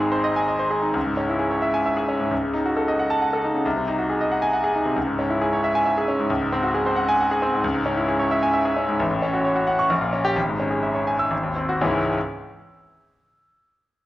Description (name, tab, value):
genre	classical, virtuoso piano study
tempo	117-138 BPM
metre	3/4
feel	rubato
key	C# minor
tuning	A4 = 439 Hz
part	bright grand piano	solo	0.0-12.2 s	G#1 to E6	-20 LUFS	equal	none
room	moderate large studio reverb, RT60 1.4 s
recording	worn, warbling old tape, cassette tape, warbly pitch drift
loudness	-20 LUFS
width	side -15 dB against mid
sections	1.0-11.8 A section; 11.8-13.2 B section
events	none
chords	0.0 G#; 1.0 C#m; 2.3 D#m7b5/C#; 3.6 G#7/B#; 5.0 C#m; 6.3 G#7/C#; 7.6 C#m; 9.0 F#m/A; 9.9 A#m6; 10.4 C#m/G#; 11.3 G#7; 11.8 C#m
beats	0.00 0.48 | 0.95 1.41 1.86 | 2.32 2.77 3.21 | 3.65 4.09 4.53 | 4.96 5.41 5.85 | 6.30 6.74 7.19 | 7.64 8.09 8.54 | 8.99 9.45 9.90 | 10.36 10.83 11.31 | 11.82